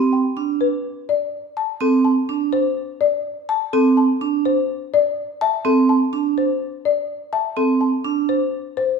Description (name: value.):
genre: classical, minimalist pattern music.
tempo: 125 BPM.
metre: 4/4.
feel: straight.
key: unclear.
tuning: A4 = 439 Hz.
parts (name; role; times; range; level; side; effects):
folk marimba with soft mallets; melody; 0.0-9.0 s; G4 to A5; -21 LUFS; left 8 dB; none.
vibraphone with medium hard mallets; arpeggios; 0.0-8.4 s; C4 to D4; -18 LUFS; right 5 dB; none.
xylophone with soft rubber mallets; arpeggios; 1.6-7.6 s; A5; -25 LUFS; left 10 dB; none.
room: moderate large studio reverb, RT60 1.3 s.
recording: heard from further back in the room.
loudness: -17 LUFS.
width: side -5 dB against mid.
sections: 0.0-9.0 A section.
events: none.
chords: 0.0 C5; 1.1 D5/C.